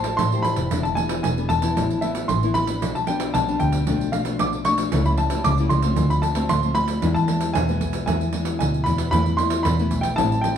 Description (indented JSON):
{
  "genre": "samba and choro",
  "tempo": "114 BPM",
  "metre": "4/4",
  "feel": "straight",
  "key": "unclear",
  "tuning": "A4 = 440 Hz",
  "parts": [
    { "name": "warm baby grand piano", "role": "melody", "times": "0.0-10.6 s", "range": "E5 to D6", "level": "-24 LUFS", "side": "equal", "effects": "none" },
    { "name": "nylon-string guitar", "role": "accompaniment", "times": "0.0-10.6 s", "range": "A2 to C5", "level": "-25 LUFS", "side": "left 3 dB", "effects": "none" },
    { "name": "dark double bass", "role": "bass", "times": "0.0-10.6 s", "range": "E1 to A2", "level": "-24 LUFS", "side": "equal", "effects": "none" },
    { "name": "pandeiro", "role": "percussion", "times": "0.0-10.6 s", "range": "none", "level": "-27 LUFS", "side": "right 4 dB", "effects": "none" }
  ],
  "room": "wet studio reverb, RT60 0.9 s",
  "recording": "heard from further back in the room",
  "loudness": "-19 LUFS",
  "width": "side -8 dB against mid",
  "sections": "0.7-10.6 A section",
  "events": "none",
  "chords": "0.0 Am7; 0.7 E7; 1.8 Asus2; 2.8 G/B; 3.9 Bm7b5; 4.9 A7/C#; 6.0 Dm7; 7.0 E; 9.1 Esus4"
}